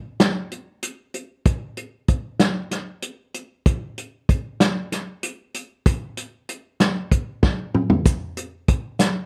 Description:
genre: progressive instrumental, progressive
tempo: 191 BPM (eighths)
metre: 7/8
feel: straight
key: none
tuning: none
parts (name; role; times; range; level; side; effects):
- unplugged drum kit; drums; 0.2-9.1 s; hi-hat, kick drum, snare drum, toms; -21 LUFS; equal; none
- tube shaker; percussion; 8.1-9.3 s; none; -38 LUFS; equal; none
room: light reverb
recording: dark, warm production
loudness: -23 LUFS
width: mono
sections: 0.0-8.1 A section; 8.1-9.3 A section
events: drum fill 7.4-8.1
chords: none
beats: 0.20 0.51 0.83 1.14 | 1.46 1.77 2.08 2.40 2.71 3.03 3.34 | 3.66 3.97 4.29 4.60 4.91 5.23 5.54 | 5.86 6.17 6.49 6.80 7.11 7.43 7.74 | 8.05 8.37 8.68 9.00

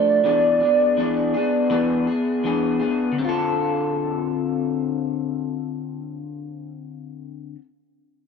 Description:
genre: indie pop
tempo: 82 BPM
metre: 4/4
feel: straight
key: D minor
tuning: A4 = 440 Hz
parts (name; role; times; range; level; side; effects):
- warbly nostalgic lead; melody; 0.0-2.4 s; D5; -19 LUFS; right 2 dB; lush chorus, slapback echo
- electric guitar through a small old amp; accompaniment; 0.0-7.6 s; D3 to A4; -22 LUFS; left 3 dB; wide subtle chorus, vibrato effect
room: light reverb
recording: dark, warm production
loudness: -19 LUFS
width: side -6 dB against mid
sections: 0.0-3.2 A section; 3.2-6.1 B section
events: none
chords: 0.3 E7; 3.2 Dm7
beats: | 0.26 0.98 1.71 2.44 | 3.17 3.89 4.62 5.35

